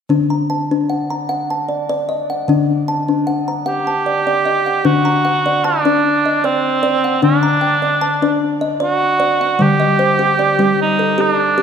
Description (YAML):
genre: world meditative, meditative tuned percussion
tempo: 76 BPM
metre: 3/4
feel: straight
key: D phrygian dominant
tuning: A4 = 440 Hz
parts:
  - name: kalimba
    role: arpeggios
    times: 0.1-11.6 s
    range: D3 to Bb5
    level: -16 LUFS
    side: left 2 dB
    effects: shimmer reverb
  - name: warm cor anglais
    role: melody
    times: 3.7-11.6 s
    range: C4 to G4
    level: -15 LUFS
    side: right 3 dB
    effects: shimmer reverb
room: wet scoring stage reverb, RT60 1.7 s, studio reverb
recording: none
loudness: -13 LUFS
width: side -7 dB against mid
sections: 0.1-4.9 A section; 4.9-11.6 B section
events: none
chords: 0.1 D; 9.6 G5/D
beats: | 0.10 0.89 1.68 | 2.48 3.27 4.06 | 4.85 5.65 6.44 | 7.23 8.02 8.81 | 9.60 10.39 11.19